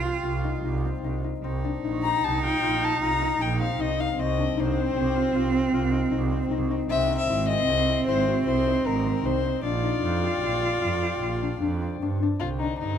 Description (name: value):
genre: contemporary instrumental, chamber music in an uneven meter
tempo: 153 BPM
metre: 7/4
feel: straight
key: C minor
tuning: A4 = 441 Hz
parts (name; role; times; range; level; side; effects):
- clear cello; second line; 0.0-13.0 s; D3 to F4; -28 LUFS; right 5 dB; none
- concert harp; arpeggios; 0.0-13.0 s; C4 to G#4; -30 LUFS; left 8 dB; none
- clear double bass; bass; 0.0-13.0 s; G#1 to G2; -28 LUFS; right 3 dB; none
- dark violin; melody; 2.0-13.0 s; Eb4 to Bb5; -27 LUFS; left 7 dB; none
room: moderate recital hall reverb, RT60 1.6 s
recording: close, detailed microphones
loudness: -23 LUFS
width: side -8 dB against mid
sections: 0.0-12.4 A section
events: none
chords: 0.0 F5/C; 1.4 Eb6; 4.2 F5/C; 6.9 Caug; 9.6 Bb6; 12.4 Cmadd9